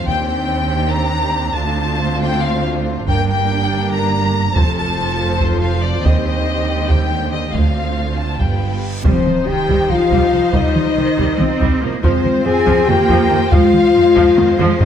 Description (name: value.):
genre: cinematic, epic orchestral film score.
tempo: 281 BPM (eighths).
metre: 7/8.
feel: straight.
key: G minor, C minor from 9.0 s.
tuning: A4 = 440 Hz.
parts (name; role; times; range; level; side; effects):
rich chamber violin section; melody; 0.0-14.8 s; C5 to Bb5; -23 LUFS; left 4 dB; none.
warm symphonic violin section; second line; 0.0-14.8 s; F4 to C5; -26 LUFS; left 3 dB; none.
warm symphonic viola section; accompaniment; 0.0-14.8 s; D3 to F4; -24 LUFS; right 1 dB; none.
dark French horn section; sustained chords; 0.0-14.8 s; D3 to Ab4; -19 LUFS; left 5 dB; none.
dark symphonic double bass section; bass; 0.0-14.8 s; F1 to F2; -21 LUFS; right 4 dB; none.
rich symphonic cello section; bass; 0.0-14.8 s; D2 to C4; -22 LUFS; right 3 dB; none.
taiko ensemble; drums; 0.1-14.8 s; none; -18 LUFS; equal; none.
reverse cymbal and impact; sound effects; 8.7-10.5 s; none; -30 LUFS; equal; none.
mellow hollow concert flute; second line; 9.0-14.8 s; C5 to Ab5; -24 LUFS; equal; none.
room: moderate scoring stage reverb, RT60 1.8 s.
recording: none.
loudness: -13 LUFS.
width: side -9 dB against mid.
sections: 0.0-9.0 A section; 9.0-14.8 B section.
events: reverse cymbal 8.7-9.0; impact 9.0-10.5; drum fill 14.4-14.8.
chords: 0.1 Cmadd9/Eb; 1.6 Dm7; 3.1 Gm; 4.6 F; 6.1 Cmadd9/Eb; 7.6 Dm7; 8.4 G7; 9.0 Cm; 12.0 Fm.